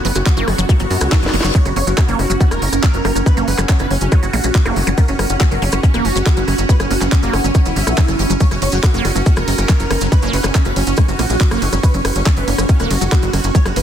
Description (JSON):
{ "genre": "psychedelic trance", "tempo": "140 BPM", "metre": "4/4", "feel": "straight", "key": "F# major", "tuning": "A4 = 439 Hz", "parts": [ { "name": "dense compressed supersaw", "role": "melody", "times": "0.0-13.8 s", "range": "C#4 to C#5", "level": "-24 LUFS", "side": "right 1 dB", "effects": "phaser, sidechain pumping, dub echo" }, { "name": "pulsing gated texture", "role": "sustained chords", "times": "0.0-13.8 s", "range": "F#3 to C#4", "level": "-25 LUFS", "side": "right 3 dB", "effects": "chorus, built-in reverb, sidechain pumping" }, { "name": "liquid acid bass", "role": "riff", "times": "0.0-13.8 s", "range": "E3 to G4", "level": "-24 LUFS", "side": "moving between left 5 dB and right 4 dB", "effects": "phaser, auto-pan, sidechain pumping, dub echo" }, { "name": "tight sequencer bass", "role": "bass", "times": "0.0-13.8 s", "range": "E1 to F#2", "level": "-19 LUFS", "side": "equal", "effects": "none" }, { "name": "garage drum kit", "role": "drums", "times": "0.0-13.8 s", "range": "handclaps, hi-hat, ride cymbal, rim click, snare drum", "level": "-23 LUFS", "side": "equal", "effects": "soft clipping on snare" }, { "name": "ethereal airy pad", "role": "texture", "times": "0.0-13.8 s", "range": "C#4 to C#6", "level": "-26 LUFS", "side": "equal", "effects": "ensemble chorus, built-in reverb, phaser, sidechain pumping" }, { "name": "maracas", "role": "percussion", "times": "0.2-13.7 s", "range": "none", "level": "-29 LUFS", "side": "right 4 dB", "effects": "none" }, { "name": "electronic kick drum", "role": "drums", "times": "0.3-13.6 s", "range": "none", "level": "-15 LUFS", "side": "equal", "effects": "none" }, { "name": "reverse cymbal and zap", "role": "sound effects", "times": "0.9-1.5, 4.7-4.8 s", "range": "none", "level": "-27 LUFS", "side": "left 5 dB", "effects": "none" }, { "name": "metallic wobble bass", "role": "second line", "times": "1.9-3.8, 8.7-10.8 s", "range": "F#3 to F#4", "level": "-34 LUFS", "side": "left 2 dB", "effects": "none" } ], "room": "digital ambience", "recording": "dense, heavily limited modern master", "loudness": "-13 LUFS", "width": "side -9 dB against mid", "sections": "0.0-13.8 A section", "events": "reverse cymbal 0.9-1.5; drum fill 1.1-1.5", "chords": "0.0 F#5" }